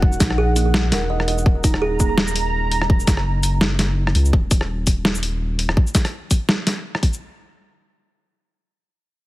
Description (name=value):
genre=half-time drum and bass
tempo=167 BPM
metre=4/4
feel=swing 56% on 16ths, half-time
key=Eb phrygian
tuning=A4 = 440 Hz
part: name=dark analog pad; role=sustained chords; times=0.0-4.3 s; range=Eb4 to Bb5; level=-27 LUFS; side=right 2 dB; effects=chorus, sidechain pumping
part: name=kalimba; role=arpeggios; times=0.0-2.7 s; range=Bb3 to Eb5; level=-25 LUFS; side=right 4 dB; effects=vintage 12-bit sampler grit, digital delay
part: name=saturated sub bass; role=bass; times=0.0-5.8 s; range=Eb1 to Db2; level=-21 LUFS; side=equal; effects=none
part: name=electronic kick drum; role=drums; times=0.0-7.1 s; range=none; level=-17 LUFS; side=equal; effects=studio reverb
part: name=boom bap sampler-style drum kit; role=drums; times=0.1-7.2 s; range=hi-hat, rim click, shaker, snare drum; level=-21 LUFS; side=equal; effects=studio reverb
room=little or no reverb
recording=heavily compressed radio sound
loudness=-17 LUFS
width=side -17 dB against mid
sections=0.0-7.2 A section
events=drop 0.0-7.2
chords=0.0 Ebm